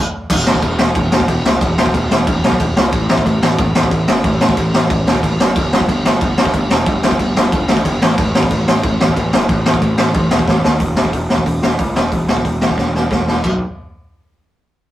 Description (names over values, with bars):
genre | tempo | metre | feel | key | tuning
punk rock | 183 BPM | 4/4 | straight | unclear | A4 = 436 Hz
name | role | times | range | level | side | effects
fuzz picked electric bass | bass | 0.3-13.6 s | E1 to D#2 | -18 LUFS | equal | overdrive
raw garage drum kit | drums | 0.3-13.5 s | crash cymbal, hi-hat, kick drum, snare drum | -14 LUFS | equal | none
room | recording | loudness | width
light reverb | rough rehearsal-room recording, warm saturation | -12 LUFS | side -14 dB against mid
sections
0.3-10.8 A section; 10.8-13.4 B section; 13.4-14.8 C section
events
stop 0.0-0.3; drum fill 10.5-10.8, 12.8-13.4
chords
none